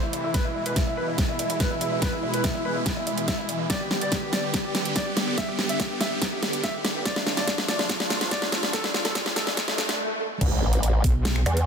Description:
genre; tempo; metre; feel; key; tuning
heavy wobble dubstep; 143 BPM; 4/4; half-time; unclear; A4 = 440 Hz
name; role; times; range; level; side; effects
clear concert grand piano; melody; 0.0-10.0 s; D4 to E5; -30 LUFS; left 1 dB; low-pass filter, ping-pong delay
supersaw chords; sustained chords; 0.0-10.0 s; B2 to G4; -30 LUFS; right 1 dB; phaser, sidechain pumping
dubstep drum kit; drums; 0.1-11.7 s; crash cymbal, finger snaps, hi-hat, snare drum; -27 LUFS; equal; small room ambience
electronic kick drum; drums; 0.3-11.1 s; none; -28 LUFS; equal; small room ambience
riser, swell and impact; sound effects; 6.4-11.7 s; none; -33 LUFS; equal; none
formant-sweep wobble bass; bass; 10.4-11.7 s; A1 to E2; -22 LUFS; equal; chorus, overdrive
metallic wobble bass; bass; 11.0-11.4 s; B1; -24 LUFS; equal; chorus, overdrive
room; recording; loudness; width
moderate plate reverb, RT60 2.2 s; dense, heavily limited modern master, high-pass filter; -23 LUFS; side -6 dB against mid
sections
0.0-10.4 A section; 10.4-11.7 B section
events
build-up 0.0-10.4; drum fill 0.0-10.0; filter sweep on grand piano 0.0-10.4; filter sweep 0.0-10.4; swell 9.6-10.4; stop 10.0-10.4; drop 10.4-11.7; impact 10.4-11.7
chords
0.3 E; 3.7 G; 7.1 Dm; 10.4 Asus2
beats
| 0.34 0.76 1.18 1.60 | 2.02 2.44 2.86 3.28 | 3.70 4.12 4.54 4.96 | 5.38 5.80 6.22 6.64 | 7.05 7.47 7.89 8.31 | 8.73 9.15 9.57 9.99 | 10.41 10.83 11.25

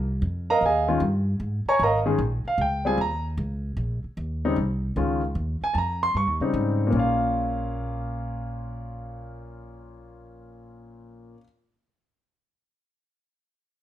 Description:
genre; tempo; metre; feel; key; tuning
modal jazz; 152 BPM; 4/4; swing 67% on 8ths; Bb dorian; A4 = 440 Hz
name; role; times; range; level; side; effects
upright bass; bass; 0.0-11.3 s; Ab1 to Ab2; -28 LUFS; equal; none
warm concert grand piano; accompaniment; 0.5-11.4 s; Bb2 to Db6; -24 LUFS; equal; none
room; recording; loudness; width
light reverb; minimal, uncompressed stereo recording; -23 LUFS; side -12 dB against mid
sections
0.0-6.9 A section; 6.9-10.1 B section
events
none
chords
0.0 Bbsus4; 0.6 Eb9sus4; 6.9 Bbm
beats
0.22 | 0.61 1.01 1.40 1.80 | 2.19 2.59 2.98 3.38 | 3.77 4.17 4.56 4.96 | 5.35 5.75 6.14 6.54 | 6.93 7.33 7.73 8.12 | 8.52 8.91 9.31 9.70

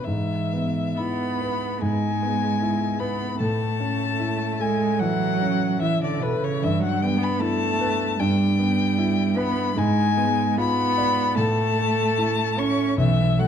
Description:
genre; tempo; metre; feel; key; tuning
classical, slow romantic movement for piano trio; 75 BPM; 4/4; rubato; A major; A4 = 442 Hz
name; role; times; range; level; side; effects
rich violin; melody; 0.0-13.5 s; B4 to C#6; -26 LUFS; left 7 dB; none
rich cello; second line; 0.0-13.5 s; B2 to C#4; -25 LUFS; right 6 dB; none
warm concert grand piano; accompaniment; 0.0-13.5 s; B1 to D5; -24 LUFS; left 2 dB; none
room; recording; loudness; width
wet recital hall reverb, RT60 1.7 s; dark, warm production; -20 LUFS; side -8 dB against mid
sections
0.0-13.5 A section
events
none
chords
0.1 E/G#; 3.4 A; 6.6 Em/G; 9.8 G#dim7; 11.4 A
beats
| 0.06 0.99 1.81 2.61 | 3.40 4.20 5.00 5.82 | 6.63 7.41 8.21 8.99 | 9.77 10.58 11.37 12.18 | 12.98

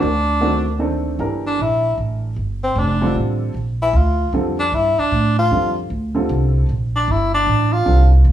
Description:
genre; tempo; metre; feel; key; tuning
modal jazz; 153 BPM; 3/4; swing 65% on 8ths; G dorian; A4 = 440 Hz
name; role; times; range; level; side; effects
warm tenor saxophone; melody; 0.0-8.1 s; C4 to F4; -19 LUFS; left 1 dB; none
upright bass; bass; 0.0-8.3 s; F1 to A2; -18 LUFS; right 1 dB; none
warm baby grand piano; accompaniment; 0.4-8.1 s; D3 to Bb4; -22 LUFS; right 1 dB; none
room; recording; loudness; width
moderate large studio reverb, RT60 0.9 s; band playing live in one room, small room ambience; -16 LUFS; side -11 dB against mid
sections
0.0-1.2 A section; 1.2-8.3 B section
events
tenor saxophone solo 1.2-8.3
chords
0.0 D7b9; 1.2 Gm9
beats
| 0.02 0.41 0.81 | 1.20 1.59 1.98 | 2.37 2.77 3.16 | 3.55 3.94 4.33 | 4.72 5.12 5.51 | 5.90 6.29 6.68 | 7.07 7.46 7.86 | 8.25

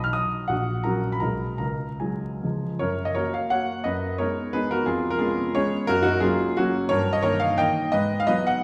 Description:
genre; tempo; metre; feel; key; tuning
classical, romantic triple-time dance for piano with dotted rhythms; 137-189 BPM; 3/4; rubato; F# major; A4 = 440 Hz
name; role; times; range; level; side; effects
warm grand piano; solo; 0.0-8.6 s; A#1 to E#6; -24 LUFS; equal; none
room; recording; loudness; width
wet recital hall reverb, RT60 1.6 s; heard from further back in the room, vinyl crackle; -25 LUFS; mono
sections
0.0-2.8 A section; 2.8-8.6 B section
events
none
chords
0.5 F#/A#; 1.2 G#m7/B; 1.6 C#sus4; 2.4 C#; 2.8 F#; 3.9 G#m7/F#; 4.9 C#7/E#; 5.9 F#; 6.9 D#7/G; 7.9 G#m7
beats
0.14 | 0.48 0.84 1.22 | 1.60 2.02 2.44 | 2.82 3.18 3.53 | 3.86 4.21 4.55 | 4.88 5.21 5.56 | 5.89 6.23 6.57 | 6.90 7.24 7.59 | 7.94 8.29

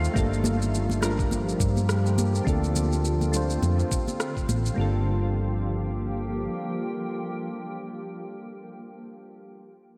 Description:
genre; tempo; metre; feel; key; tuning
sunset chillout; 104 BPM; 4/4; swing 57% on 16ths; G minor; A4 = 440 Hz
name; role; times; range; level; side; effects
soft electric-piano-like synth keys; accompaniment; 0.0-9.6 s; G3 to C5; -34 LUFS; equal; chorus, low-pass filter, tape echo
shimmering ambient pad; sustained chords; 0.0-7.8 s; D3 to G4; -34 LUFS; equal; chorus, built-in reverb
hollow-body short-scale fingered electric bass; bass; 0.0-6.5 s; G1 to G2; -28 LUFS; equal; none
electronic shaker and rim click; drums; 0.0-4.8 s; none; -36 LUFS; equal; overdrive
electronic kick drum; drums; 0.2-4.5 s; none; -30 LUFS; equal; none
congas; percussion; 0.4-4.6 s; none; -35 LUFS; equal; none
room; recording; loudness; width
moderate lush hall reverb, RT60 2.2 s; dreamy mix soaked in reverb; -26 LUFS; mono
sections
0.0-4.8 A section; 4.8-7.1 B section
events
filter sweep on synth keys 0.0-4.8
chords
0.2 Gm7; 2.5 Dm7; 4.8 Gm7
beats
| 0.16 0.73 1.31 1.89 | 2.46 3.04 3.62 4.20 | 4.77 5.35 5.93 6.50

